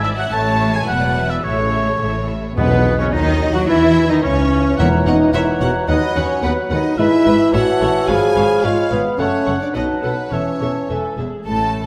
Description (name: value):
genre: quick classical-period movement for symphony orchestra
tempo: 108 BPM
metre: 2/4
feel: straight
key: A major from 7.0 s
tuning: A4 = 440 Hz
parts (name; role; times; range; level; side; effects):
- warm studio violin section; melody; 0.0-11.9 s; B3 to F#5; -31 LUFS; equal; none
- rich chamber violin section; second line; 0.0-11.9 s; B4 to A5; -30 LUFS; equal; none
- warm oboe; second line; 0.0-11.0 s; B3 to A5; -26 LUFS; equal; none
- warm chamber viola section; accompaniment; 0.0-11.9 s; A3 to E5; -30 LUFS; equal; none
- mellow French horn section; sustained chords; 0.0-10.9 s; C#3 to G#4; -22 LUFS; equal; none
- dark chamber double bass section; bass; 0.0-11.8 s; E1 to E2; -26 LUFS; equal; none
- warm chamber cello section; bass; 0.0-11.8 s; D#2 to F#3; -26 LUFS; equal; none
- hollow large flute ensemble; second line; 2.6-11.8 s; C#4 to B5; -29 LUFS; equal; none
- mellow clarinet; second line; 2.6-11.2 s; B3 to C#5; -28 LUFS; equal; none
- mellow bassoon; accompaniment; 2.6-11.2 s; E3 to B3; -26 LUFS; equal; none
- timpani; percussion; 2.6-5.6 s; E2; -25 LUFS; equal; none
room: wet scoring stage reverb, RT60 1.6 s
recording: none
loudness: -17 LUFS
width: mono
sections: 0.0-2.6 A section; 2.6-11.5 B section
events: none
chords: 0.3 A; 0.9 E5; 1.4 A; 2.6 G#madd11/B; 3.1 D#m; 3.7 C#madd9; 4.8 F#7/E; 5.9 B/D#; 7.0 E/G#; 7.5 A; 8.1 C#7/G#; 9.2 F#m; 9.7 B7; 10.3 A/E; 10.9 E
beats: | 0.32 0.88 | 1.44 2.01 | 2.58 3.13 | 3.68 4.24 | 4.79 5.33 | 5.88 6.43 | 6.98 7.53 | 8.08 8.63 | 9.19 9.75 | 10.32 10.89 | 11.46